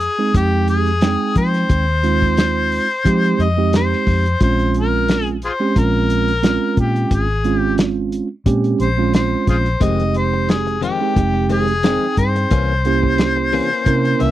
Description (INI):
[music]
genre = straight-eighth soul blues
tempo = 89 BPM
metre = 4/4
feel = swing 54% on 16ths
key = F minor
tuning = A4 = 442 Hz
[part]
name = warm harmonica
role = melody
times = 0.0-14.3 s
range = F4 to E5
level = -20 LUFS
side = left 3 dB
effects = overdrive, slapback echo
[part]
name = vintage muted fingered electric bass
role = bass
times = 0.0-14.3 s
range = F1 to F3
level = -19 LUFS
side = left 1 dB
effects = none
[part]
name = warm soul drum kit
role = drums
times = 0.0-14.3 s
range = hi-hat, kick drum, snare drum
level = -18 LUFS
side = left 1 dB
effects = none
[part]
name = mellow tine electric piano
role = accompaniment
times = 0.2-14.3 s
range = Ab3 to G5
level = -19 LUFS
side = right 6 dB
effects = auto-pan
[part]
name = direct-recorded clean electric guitar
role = stabs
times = 9.8-14.3 s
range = F2 to Db4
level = -25 LUFS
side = left 8 dB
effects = spring reverb
[sound]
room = little or no reverb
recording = dry, close 1970s-style studio recording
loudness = -14 LUFS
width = side -13 dB against mid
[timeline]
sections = 0.0-14.3 A section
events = none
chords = 0.0 Fm7; 4.4 Bbm7; 9.8 Fm7; 12.5 C7b9